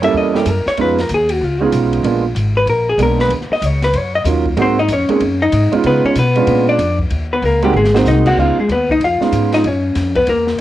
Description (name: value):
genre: jazz, small-group swing and bop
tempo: 190 BPM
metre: 4/4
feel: swing 64% on 8ths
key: Db mixolydian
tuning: A4 = 442 Hz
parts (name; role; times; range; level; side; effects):
- vintage hollow-body jazz guitar; melody; 0.0-10.6 s; G3 to Gb5; -15 LUFS; left 2 dB; cassette tape, plate reverb
- dark baby grand piano; accompaniment; 0.0-10.6 s; Gb3 to A4; -17 LUFS; right 6 dB; cassette tape, plate reverb
- upright bass; bass; 0.0-10.6 s; Ab1 to Db3; -18 LUFS; left 1 dB; none
- open jazz drum kit; drums; 0.0-10.6 s; crash cymbal, hi-hat, kick drum, ride cymbal, snare drum, toms; -27 LUFS; left 1 dB; cassette tape
room: light reverb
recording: home recording on cassette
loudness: -12 LUFS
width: side -14 dB against mid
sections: 0.0-8.4 A section; 8.4-10.6 A section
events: hollow-body jazz guitar solo 0.0-10.6; drum fill 7.7-8.1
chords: 0.0 Gdim7; 0.8 Db7; 2.0 Bb7b9; 3.3 Ebm7; 4.6 Ab7; 5.8 Db7; 6.5 Bb7b9; 7.1 Ebm7; 7.7 Ab7; 8.4 Db7; 9.6 Gb7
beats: 0.14 0.46 | 0.77 1.09 1.41 1.72 | 2.04 2.36 2.67 2.99 | 3.31 3.62 3.94 4.26 | 4.57 4.89 5.21 5.52 | 5.84 6.16 6.47 6.79 | 7.11 7.42 7.74 8.05 | 8.37 8.69 9.00 9.32 | 9.64 9.96 10.27 10.59